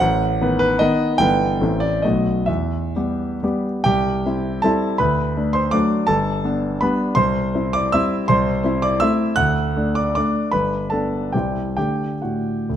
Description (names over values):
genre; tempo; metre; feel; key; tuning
classical, romantic triple-time dance for piano with dotted rhythms; 121-178 BPM; 3/4; rubato; unclear; A4 = 440 Hz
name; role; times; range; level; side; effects
warm concert grand piano; solo; 0.0-12.8 s; G1 to F#6; -17 LUFS; equal; none
room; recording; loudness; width
moderate recital hall reverb, RT60 1.5 s; close, detailed microphones; -17 LUFS; side -10 dB against mid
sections
0.0-3.9 A section; 3.9-12.8 B section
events
none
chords
0.0 B7/A; 1.2 Em/G; 1.6 Am7; 2.0 B7; 2.5 Em; 3.9 C; 5.0 D; 6.1 G; 7.2 C; 8.3 Am/C; 9.4 D; 10.5 G; 11.3 C; 11.8 D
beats
| 0.02 0.41 0.80 | 1.19 1.61 2.04 | 2.48 2.96 3.43 | 3.87 4.26 4.64 | 5.00 5.37 5.74 | 6.09 6.45 6.82 | 7.17 7.54 7.92 | 8.28 8.63 9.00 | 9.36 9.75 10.16 | 10.54 10.92 11.33 | 11.76 12.22 12.69